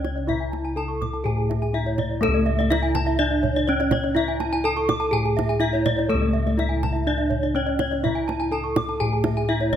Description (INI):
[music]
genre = Balinese gamelan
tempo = 124 BPM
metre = 4/4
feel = straight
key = C# pelog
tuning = A4 = 440 Hz
[part]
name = gamelan-type bronze metallophone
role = melody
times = 0.0-9.8 s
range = A3 to A4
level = -25 LUFS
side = right 1 dB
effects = none
[part]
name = gamelan-type bronze metallophone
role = arpeggios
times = 0.0-9.8 s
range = A4 to D6+35c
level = -28 LUFS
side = left 6 dB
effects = none
[part]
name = gamelan-type bronze metallophone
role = arpeggios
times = 0.0-9.7 s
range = C#5 to C#6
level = -30 LUFS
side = right 4 dB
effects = none
[part]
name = gamelan-type bossed gongs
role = bass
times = 0.0-9.8 s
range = C#2 to A4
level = -25 LUFS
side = left 2 dB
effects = none
[part]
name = kendang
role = percussion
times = 0.0-9.8 s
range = none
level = -29 LUFS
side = right 4 dB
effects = none
[sound]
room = light reverb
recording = close, detailed microphones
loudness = -20 LUFS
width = side -9 dB against mid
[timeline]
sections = 0.0-9.8 A section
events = none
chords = none